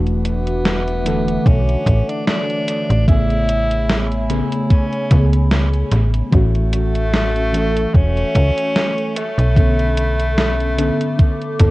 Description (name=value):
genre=vaporwave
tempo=74 BPM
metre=4/4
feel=swing 55% on 16ths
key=A major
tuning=A4 = 440 Hz
part: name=breathy tenor saxophone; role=melody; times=0.0-11.7 s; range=A3 to E4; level=-22 LUFS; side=equal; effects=tape echo
part: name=mellow FM electric piano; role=accompaniment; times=0.0-11.7 s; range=C#3 to A4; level=-22 LUFS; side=left 1 dB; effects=ensemble chorus, cassette tape, dub echo
part: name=warbly tape-like pad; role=sustained chords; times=0.0-11.7 s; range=A3 to D6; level=-30 LUFS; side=right 2 dB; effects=chorus, built-in reverb, vintage 12-bit sampler grit
part: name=slap-like FM bass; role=bass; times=0.0-11.7 s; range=E1 to C#2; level=-17 LUFS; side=equal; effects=none
part: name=gated 80s digital drum machine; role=drums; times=0.1-11.7 s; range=hi-hat, snare drum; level=-22 LUFS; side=equal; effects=gated reverb, gated reverb snare, dub echo
part: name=electronic kick drum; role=drums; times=1.5-11.7 s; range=none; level=-13 LUFS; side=equal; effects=none
room=light reverb, digital ambience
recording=echo-heavy mix, cassette tape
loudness=-14 LUFS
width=side -19 dB against mid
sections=0.0-11.7 A section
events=none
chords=0.0 E9sus4; 3.1 Amaj9; 6.3 F#m7/A; 9.2 Bm9